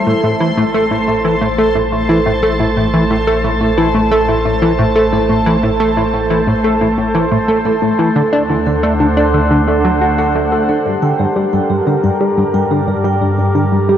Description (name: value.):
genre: ambient, sequencer-driven space music.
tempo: 89 BPM.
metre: 4/4.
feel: straight.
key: A minor, G minor from 10.9 s.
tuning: A4 = 442 Hz.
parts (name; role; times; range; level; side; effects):
evolving wavetable pad; sustained chords; 0.0-14.0 s; G2 to A5; -18 LUFS; equal; phaser, built-in reverb.
vibraphone with soft mallets; arpeggios; 0.0-14.0 s; A3 to G5; -18 LUFS; right 2 dB; auto-pan, tape echo.
round analog bass; bass; 0.0-10.8 s; A1 to D2; -22 LUFS; equal; none.
bubbling stepped-filter texture; texture; 0.0-10.9 s; C6; -28 LUFS; left 1 dB; chorus, built-in reverb.
tight sequenced synth; riff; 0.1-14.0 s; G2 to F#4; -14 LUFS; equal; chorus, tape echo.
room: wet huge ambient reverb, RT60 8.9 s.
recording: worn, warbling old tape, cassette tape, warbly pitch drift.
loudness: -11 LUFS.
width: side -10 dB against mid.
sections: 0.0-10.9 A section; 10.9-14.0 B section.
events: none.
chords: 0.0 Am; 8.2 D7; 10.9 Gmadd9.